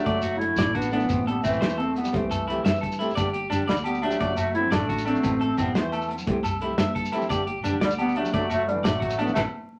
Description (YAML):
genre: highlife guitar band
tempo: 116 BPM (dotted quarters)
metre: 12/8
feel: straight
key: unclear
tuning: A4 = 440 Hz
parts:
  - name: dark clarinet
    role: melody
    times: 0.0-9.4 s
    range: G3 to E4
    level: -29 LUFS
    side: equal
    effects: none
  - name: clear trombone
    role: second line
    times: 0.0-9.4 s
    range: D3 to C4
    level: -36 LUFS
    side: equal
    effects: none
  - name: flamenco guitar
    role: accompaniment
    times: 0.0-9.4 s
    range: E3 to G4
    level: -34 LUFS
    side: equal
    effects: none
  - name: electric guitar at the edge of break-up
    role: arpeggios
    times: 0.0-9.4 s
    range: C4 to E5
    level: -32 LUFS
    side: equal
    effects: none
  - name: congas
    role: percussion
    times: 0.0-9.4 s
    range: none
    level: -39 LUFS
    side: equal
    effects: none
  - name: fingered electric bass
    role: bass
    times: 0.1-9.4 s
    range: F#1 to G2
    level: -35 LUFS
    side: equal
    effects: none
  - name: warm soul drum kit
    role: drums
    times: 0.1-9.4 s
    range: hi-hat, kick drum, snare drum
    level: -31 LUFS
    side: equal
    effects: none
  - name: shekere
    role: percussion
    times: 0.2-9.4 s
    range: none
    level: -37 LUFS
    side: equal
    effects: none
  - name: agogo bells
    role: percussion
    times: 3.2-9.4 s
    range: none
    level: -37 LUFS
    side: equal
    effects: none
room: wet club reverb, RT60 0.5 s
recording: vinyl crackle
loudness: -25 LUFS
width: mono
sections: 0.0-9.8 A section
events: band accent 9.4-9.8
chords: 0.1 D/F#; 1.1 Amadd9; 2.1 C6; 3.2 G; 4.2 D/F#; 5.2 Amadd9; 6.3 C6; 7.3 G; 8.3 D/F#